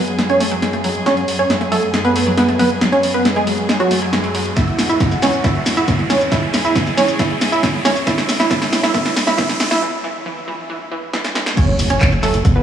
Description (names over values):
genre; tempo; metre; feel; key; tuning
uplifting trance; 137 BPM; 4/4; straight; F# minor; A4 = 439 Hz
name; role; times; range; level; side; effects
wide unison pluck; melody; 0.0-12.6 s; F#3 to E5; -18 LUFS; right 2 dB; sidechain pumping, digital delay
clear symphonic string section; sustained chords; 0.0-12.6 s; E2 to G#4; -25 LUFS; left 1 dB; sidechain pumping
riser and impact; sound effects; 0.0-12.6 s; none; -26 LUFS; right 1 dB; none
punchy analog drum machine; drums; 0.1-12.5 s; crash cymbal, handclaps, hi-hat, shaker, snare drum; -20 LUFS; equal; none
wide unison pluck; arpeggios; 0.2-12.5 s; E3 to A3; -25 LUFS; left 1 dB; sidechain pumping, digital delay
electronic kick drum; drums; 4.6-12.5 s; none; -18 LUFS; equal; none
tight sequencer bass; bass; 11.7-12.6 s; F#1; -21 LUFS; equal; sidechain pumping
room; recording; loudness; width
light reverb; played on a big sound system in a bare room, stone room reverb, high-pass filter, small room ambience; -14 LUFS; side -9 dB against mid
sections
0.0-11.6 A section; 11.6-12.6 B section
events
build-up 0.0-11.6; drum fill 0.0-9.8, 11.1-11.6; riser 0.0-9.8; filter sweep 0.0-11.6; break 9.8-11.6; drop 11.6-12.6; impact 11.6-12.6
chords
0.0 F#sus2; 4.6 Eadd9; 8.1 A; 11.6 F#madd9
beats
0.19 0.62 | 1.06 1.50 1.94 2.38 | 2.81 3.25 3.69 4.13 | 4.57 5.00 5.44 5.88 | 6.32 6.76 7.19 7.63 | 8.07 8.51 8.95 9.38 | 9.82 10.26 10.70 11.13 | 11.57 12.01 12.45